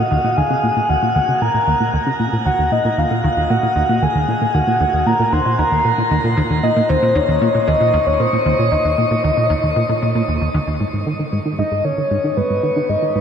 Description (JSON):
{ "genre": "ambient, sequencer-driven space music", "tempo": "115 BPM", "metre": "4/4", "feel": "straight", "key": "Eb dorian", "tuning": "A4 = 440 Hz", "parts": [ { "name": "soft octave-layered synth lead", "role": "melody", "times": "0.0-13.2 s", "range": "B4 to C6", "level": "-17 LUFS", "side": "left 1 dB", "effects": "chorus, tape echo" }, { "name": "plucky analog bass", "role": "riff", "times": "0.0-13.2 s", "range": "Eb2 to D#3", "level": "-18 LUFS", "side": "right 1 dB", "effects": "ensemble chorus, cassette tape, tape echo" } ], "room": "wet shimmer reverb, RT60 8.1 s", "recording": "none", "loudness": "-14 LUFS", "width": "side -7 dB against mid", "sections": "0.0-10.8 A section; 10.8-13.2 B section", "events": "filter sweep on analog synth bass 0.0-10.8", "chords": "0.0 Ebm; 10.8 G#m" }